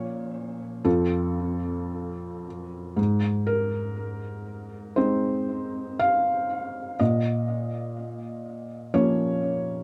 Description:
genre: neoclassical minimalist piano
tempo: 55-63 BPM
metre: 4/4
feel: rubato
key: unclear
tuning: A4 = 441 Hz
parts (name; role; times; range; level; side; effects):
- felt-muted upright piano; solo; 0.0-9.8 s; F2 to F5; -27 LUFS; equal; tape echo
room: little or no reverb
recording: dry, close 1970s-style studio recording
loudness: -26 LUFS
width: mono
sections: 0.0-3.0 A section; 3.0-9.8 A section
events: none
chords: 0.0 Bbm; 0.9 F; 3.0 Ab; 7.0 Bbm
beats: 0.85 1.93 | 2.97 3.97 4.96 6.00 | 7.00 7.97 8.94

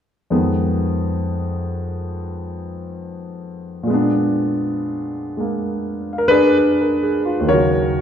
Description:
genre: solo jazz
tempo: 67 BPM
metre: 4/4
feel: swing 68% on 8ths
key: unclear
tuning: A4 = 444 Hz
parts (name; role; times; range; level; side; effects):
- warm grand piano; solo; 0.3-8.0 s; Eb2 to F5; -17 LUFS; equal; none
room: wet recital hall reverb, RT60 1.4 s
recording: recorded in a church or concert hall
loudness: -17 LUFS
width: side -8 dB against mid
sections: 0.3-7.5 A section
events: none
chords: 0.3 Fm7b5; 3.9 Bb7b9; 7.5 Ebm7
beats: | 0.30 1.20 2.10 2.99 | 3.88 4.78 5.67 6.57 | 7.46

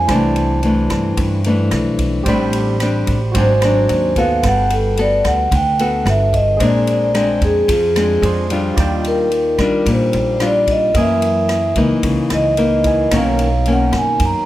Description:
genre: bossa nova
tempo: 110 BPM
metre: 4/4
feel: straight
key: unclear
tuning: A4 = 440 Hz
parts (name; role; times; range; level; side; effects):
- vibraphone with soft mallets; melody; 0.0-14.5 s; Ab4 to A#5; -17 LUFS; equal; none
- barky tine electric piano; accompaniment; 0.0-14.5 s; B3 to Eb6; -25 LUFS; right 5 dB; none
- nylon-string guitar; accompaniment; 0.0-14.5 s; Gb2 to A4; -18 LUFS; left 2 dB; none
- upright bass; bass; 0.0-14.3 s; G1 to G2; -20 LUFS; equal; none
- swinging big-band drum kit; drums; 0.1-14.3 s; kick drum, ride cymbal, rim click; -24 LUFS; equal; none
room: light reverb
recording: none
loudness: -13 LUFS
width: side -14 dB against mid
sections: 0.0-8.8 A section; 8.8-14.5 A section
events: vibraphone solo 0.0-14.5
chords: 0.1 C69; 2.3 Am11; 3.3 Ab7#11; 4.4 Gmaj9; 6.6 Bb9; 8.8 Ebmaj9; 10.9 Gb13; 13.1 Bmaj9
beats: | 0.09 0.63 1.18 1.72 | 2.26 2.80 3.35 3.89 | 4.43 4.98 5.52 6.06 | 6.61 7.15 7.69 8.23 | 8.78 9.32 9.86 10.41 | 10.95 11.49 12.04 12.58 | 13.12 13.67 14.21

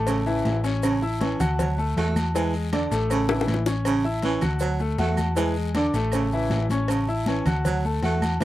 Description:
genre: latin, salsa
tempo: 158 BPM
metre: 4/4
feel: straight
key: A major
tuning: A4 = 441 Hz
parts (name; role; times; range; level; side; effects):
- bright grand piano; accompaniment; 0.0-8.4 s; E3 to F#6; -28 LUFS; left 4 dB; none
- hollow-body short-scale picked electric bass; bass; 0.0-8.4 s; A1 to E2; -26 LUFS; equal; none
- breathy baritone saxophone; second line; 0.1-8.2 s; C#3 to A3; -26 LUFS; right 4 dB; none
- agogo bells and timbales; percussion; 0.1-8.4 s; none; -33 LUFS; right 2 dB; none
- claves; percussion; 0.1-8.4 s; none; -40 LUFS; right 6 dB; none
- congas; percussion; 0.1-8.4 s; none; -29 LUFS; equal; none
- cowbell and bongos; percussion; 0.1-8.4 s; none; -31 LUFS; left 5 dB; none
- guiro; percussion; 0.1-8.4 s; none; -42 LUFS; left 6 dB; none
- maracas; percussion; 0.1-8.4 s; none; -42 LUFS; right 8 dB; none
room: light reverb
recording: dry, close 1970s-style studio recording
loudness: -21 LUFS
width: side -14 dB against mid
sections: 0.0-8.4 A section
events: drum fill 3.3-3.9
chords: 0.1 A; 1.6 D; 2.3 E7; 3.1 A; 4.6 D; 5.4 E7; 6.1 A; 7.7 D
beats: 0.08 0.46 | 0.83 1.21 1.59 1.97 | 2.35 2.72 3.10 3.48 | 3.86 4.24 4.62 5.00 | 5.37 5.75 6.13 6.51 | 6.89 7.27 7.65 8.03 | 8.41

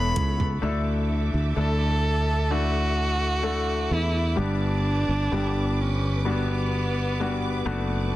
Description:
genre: pop ballad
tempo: 64 BPM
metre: 4/4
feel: straight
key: unclear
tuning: A4 = 440 Hz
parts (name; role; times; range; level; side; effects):
- warm violin; melody; 0.0-7.6 s; B3 to B5; -29 LUFS; right 1 dB; none
- bright concert grand piano; accompaniment; 0.0-8.2 s; G2 to C#5; -29 LUFS; left 3 dB; none
- warm studio string section; sustained chords; 0.0-8.2 s; E3 to D6; -36 LUFS; right 2 dB; none
- sustaining fretless electric bass; bass; 0.0-8.2 s; E1 to E2; -25 LUFS; equal; none
- deep house drum kit; drums; 0.2-0.6 s; hi-hat, toms; -28 LUFS; right 2 dB; none
room: small room reverb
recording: dense, heavily limited modern master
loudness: -22 LUFS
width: side -15 dB against mid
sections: 0.6-8.2 A section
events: drum fill 0.0-0.6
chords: 0.0 Esus4; 0.6 Dsus2; 4.4 G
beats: | 0.63 1.57 2.51 3.44 | 4.38 5.32 6.26 7.20 | 8.13

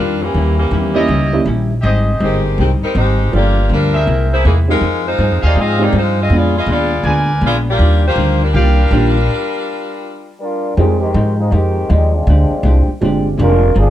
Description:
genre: jazz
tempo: 161 BPM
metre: 4/4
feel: swing 64% on 8ths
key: Eb major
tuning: A4 = 440 Hz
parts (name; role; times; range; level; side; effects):
- warm saxophone section; melody; 0.0-10.4 s; Eb3 to Eb5; -18 LUFS; left 2 dB; none
- hollow-body jazz guitar; accompaniment; 0.0-13.9 s; G2 to Ab4; -21 LUFS; left 2 dB; none
- upright bass; bass; 0.0-13.9 s; F1 to Ab2; -14 LUFS; equal; none
- clear trumpet section; stabs; 0.9-9.1 s; Fb4 to Ab5; -21 LUFS; right 1 dB; none
- dark upright piano; accompaniment; 1.0-13.6 s; G3 to A4; -19 LUFS; right 4 dB; none
- muted trombone section; second line; 10.4-13.9 s; Eb3 to Bb4; -18 LUFS; equal; none
room: light reverb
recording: dark, warm production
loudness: -12 LUFS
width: side -12 dB against mid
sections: 0.0-10.8 A section; 10.8-13.9 B section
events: stop 9.3-10.8; trombone section solo 10.8-13.9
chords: 0.3 Eb7b9; 1.8 Abmaj7; 3.3 Gm7; 4.1 C7alt; 4.8 Fm7; 6.3 Bb7b9; 7.8 Ebmaj9; 10.8 Fm9; 12.3 Bb13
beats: | 0.34 0.71 1.09 1.46 | 1.83 2.20 2.58 2.95 | 3.32 3.69 4.07 4.44 | 4.81 5.19 5.56 5.93 | 6.30 6.68 7.05 7.42 | 7.79 8.17 8.54 8.91 | 9.29 9.66 10.03 10.40 | 10.78 11.15 11.52 11.89 | 12.27 12.64 13.01 13.38 | 13.76

